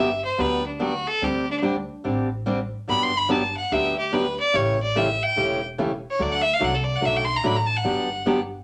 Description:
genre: country, western swing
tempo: 145 BPM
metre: 4/4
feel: swing 67% on 8ths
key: G major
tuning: A4 = 438 Hz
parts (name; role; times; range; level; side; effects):
- bright fiddle; melody; 0.0-8.4 s; D4 to C6; -26 LUFS; equal; none
- picked steel-string acoustic guitar; accompaniment; 0.0-8.4 s; C#3 to G4; -27 LUFS; equal; none
- upright bass; bass; 0.0-8.5 s; E1 to D2; -33 LUFS; equal; none
room: wet studio reverb, RT60 0.5 s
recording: none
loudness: -23 LUFS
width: mono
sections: 0.0-8.6 A section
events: fiddle solo 0.0-8.6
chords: 0.0 Gmaj7; 1.2 D7sus4; 2.9 Gmaj7; 4.5 A7; 6.2 D; 7.9 Gmaj7

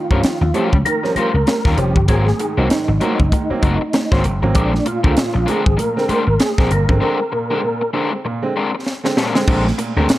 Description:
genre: funk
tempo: 97 BPM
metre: 4/4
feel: swing 60% on 16ths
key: Bb mixolydian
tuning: A4 = 439 Hz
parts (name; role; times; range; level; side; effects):
- percussive tonewheel organ; melody; 0.0-7.9 s; D4 to Bb4; -21 LUFS; equal; chorus vibrato, fast rotary speaker
- clear upright piano; stabs; 0.0-10.2 s; Ab2 to Db4; -23 LUFS; right 3 dB; none
- crunchy overdriven guitar; accompaniment; 0.1-10.1 s; G3 to C5; -23 LUFS; left 4 dB; none
- vintage slap bass; bass; 0.1-10.1 s; F1 to G2; -17 LUFS; equal; none
- tight funk drum kit; drums; 0.1-10.2 s; crash cymbal, hi-hat, kick drum, snare drum; -18 LUFS; equal; none
- congas; percussion; 0.1-9.8 s; none; -27 LUFS; right 4 dB; none
room: light reverb, studio reverb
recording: cassette tape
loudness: -14 LUFS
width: side -15 dB against mid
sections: 0.0-9.5 A section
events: break 7.0-9.5; drum fill 8.9-9.5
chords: 0.0 Eb9; 2.1 Ab9; 4.6 Bb9

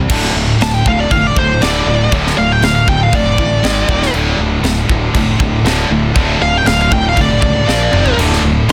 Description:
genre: heavy metal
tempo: 119 BPM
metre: 4/4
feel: straight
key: D minor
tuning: A4 = 440 Hz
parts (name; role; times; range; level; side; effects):
- heavy high-gain guitar; riff; 0.0-8.7 s; D2 to Bb3; -20 LUFS; equal; distortion
- tight distorted guitar; riff; 0.0-8.7 s; D2 to Bb3; -21 LUFS; equal; distortion
- fuzz fingered electric bass; bass; 0.0-8.7 s; D1 to C#2; -20 LUFS; equal; overdrive
- distorted electric guitar; riff; 0.1-8.7 s; D2 to D3; -24 LUFS; equal; overdrive
- tight metal drum kit; drums; 0.1-8.7 s; crash cymbal, kick drum, snare drum, splash cymbal, toms; -20 LUFS; equal; none
- high-gain lead guitar; melody; 0.6-8.2 s; C5 to A5; -18 LUFS; equal; distortion
room: little or no reverb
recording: dense, heavily limited modern master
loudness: -13 LUFS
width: mono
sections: 0.1-8.7 A section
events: lead electric guitar solo 0.1-8.7; drum fill 7.7-8.2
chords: 0.1 Dm; 3.6 G#5; 3.9 Eb5; 4.1 D5; 7.7 Bb5; 7.9 F5; 8.2 D5

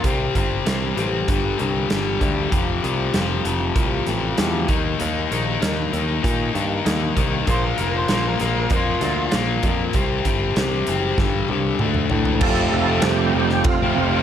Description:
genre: classic rock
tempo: 97 BPM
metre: 4/4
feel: straight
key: unclear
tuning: A4 = 441 Hz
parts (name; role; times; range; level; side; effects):
- octave-fuzz lead guitar; second line; 0.0, 7.5-9.3 s; F4 to C5; -29 LUFS; right 1 dB; distortion, digital delay
- overdriven electric guitar; riff; 0.0-14.2 s; F2 to Eb4; -22 LUFS; left 4 dB; none
- picked electric bass; bass; 0.0-14.2 s; F1 to Bb2; -25 LUFS; right 1 dB; none
- huge arena drum kit; drums; 0.0-13.8 s; crash cymbal, hi-hat, kick drum, ride cymbal, snare drum, toms; -24 LUFS; right 1 dB; none
- overdriven tonewheel organ; melody; 12.4-14.2 s; F4 to A4; -24 LUFS; right 2 dB; slow rotary speaker, chorus vibrato
- octave-fuzz lead guitar; second line; 12.4-14.2 s; C4 to F4; -29 LUFS; right 7 dB; distortion
- bright grand piano; accompaniment; 12.4-14.1 s; C4 to A4; -32 LUFS; right 7 dB; none
- phased string machine; sustained chords; 13.3-14.2 s; C4 to A4; -32 LUFS; right 5 dB; none
- raw garage guitar; riff; 12.4-14.2 s; F2 to F4; -24 LUFS; right 9 dB; overdrive
room: light reverb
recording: none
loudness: -18 LUFS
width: side -9 dB against mid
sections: 0.0-12.4 A section; 12.4-14.2 B section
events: drum fill 11.2-12.4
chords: 0.0 C5; 1.3 G5; 2.5 F5; 4.7 Eb5; 7.5 Bb5; 9.9 C5; 11.2 G5; 11.8 D5; 12.4 F

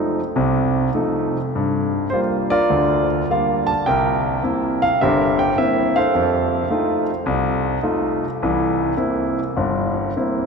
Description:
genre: solo jazz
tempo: 104 BPM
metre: 4/4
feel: swing 66% on 8ths, rubato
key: F major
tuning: A4 = 439 Hz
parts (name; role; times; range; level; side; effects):
- clear concert grand piano; solo; 0.0-10.5 s; G1 to A5; -17 LUFS; equal; none
room: wet cathedral reverb, RT60 5.9 s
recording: recorded in a church or concert hall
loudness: -17 LUFS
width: side -5 dB against mid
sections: 0.0-10.5 A section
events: none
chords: 0.0 F7; 1.5 Gm7; 3.9 C7; 6.1 F7; 8.4 C7

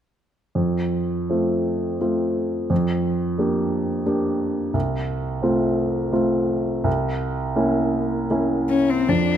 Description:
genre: classical, romantic duo for cello and grand piano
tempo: 74-89 BPM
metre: 3/4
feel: rubato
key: F major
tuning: A4 = 439 Hz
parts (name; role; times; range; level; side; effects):
- warm baby grand piano; accompaniment; 0.6-9.4 s; C2 to G4; -20 LUFS; right 1 dB; none
- warm cello; melody; 8.7-9.4 s; C4 to D4; -19 LUFS; left 5 dB; none
room: light reverb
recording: close, detailed microphones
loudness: -20 LUFS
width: side -9 dB against mid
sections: 0.6-9.1 A section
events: none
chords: 0.6 F; 2.7 Gm7/F; 4.7 F/C; 6.9 C7b9

